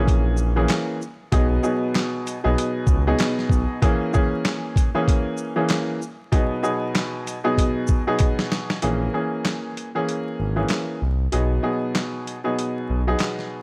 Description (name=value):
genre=hip hop, boom-bap hip-hop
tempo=96 BPM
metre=4/4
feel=swing 59% on 16ths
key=unclear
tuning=A4 = 440 Hz
part: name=warm upright piano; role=accompaniment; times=0.0-13.6 s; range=B2 to G#4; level=-26 LUFS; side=equal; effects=high-pass filter, low-pass filter
part: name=smooth synth bass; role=bass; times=0.0-3.7, 8.8-13.1 s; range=G#1 to C#2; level=-24 LUFS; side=equal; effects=none
part: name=boom bap sampler-style drum kit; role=drums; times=0.1-13.5 s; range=handclaps, hi-hat, kick drum, shaker, snare drum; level=-24 LUFS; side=equal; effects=none
part: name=finger snaps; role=percussion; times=0.7-13.4 s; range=none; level=-41 LUFS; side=equal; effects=none
room=little or no reverb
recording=vinyl crackle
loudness=-23 LUFS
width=mono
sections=0.0-8.8 A section; 8.8-13.6 B section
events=drum fill 7.6-8.8; break 8.8-13.6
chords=0.0 A#m7b5; 1.3 G#m7/B; 3.8 A#m7b5; 6.3 G#m7/B; 8.8 A#m7b5; 11.3 G#m7/B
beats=0.07 0.70 | 1.32 1.95 2.58 3.20 | 3.83 4.45 5.08 5.70 | 6.33 6.95 7.58 8.20 | 8.82 9.45 10.07 10.70 | 11.32 11.95 12.57 13.20